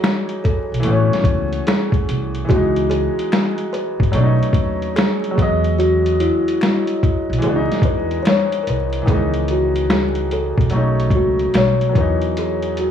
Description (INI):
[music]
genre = lo-fi hip hop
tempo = 73 BPM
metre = 4/4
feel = swing 65% on 16ths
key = C# minor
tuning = A4 = 442 Hz
[part]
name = kalimba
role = melody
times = 0.0-12.9 s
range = E4 to C#5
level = -21 LUFS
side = equal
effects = low-pass filter
[part]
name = clear upright piano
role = accompaniment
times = 0.0-12.9 s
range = D#3 to D#5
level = -22 LUFS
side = left 1 dB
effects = low-pass filter
[part]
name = lo-fi sampler-style drum kit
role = drums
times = 0.0-12.9 s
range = hi-hat, kick drum, snare drum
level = -19 LUFS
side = equal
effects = vintage 12-bit sampler grit
[part]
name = finger snaps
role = percussion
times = 0.0-11.8 s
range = none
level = -35 LUFS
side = left 7 dB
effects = none
[part]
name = upright bass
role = bass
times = 0.7-12.9 s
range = G#1 to E2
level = -20 LUFS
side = equal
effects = none
[sound]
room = moderate studio reverb, RT60 0.6 s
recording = vinyl crackle, studio ambience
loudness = -15 LUFS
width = side -8 dB against mid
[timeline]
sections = 0.0-9.1 A section; 9.1-12.9 B section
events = none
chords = 0.0 Emaj7; 0.9 Amaj7; 2.5 C#m9; 4.1 B7; 5.4 Emaj7; 7.4 C#m7; 9.1 C#m9; 10.7 B7; 12.0 E5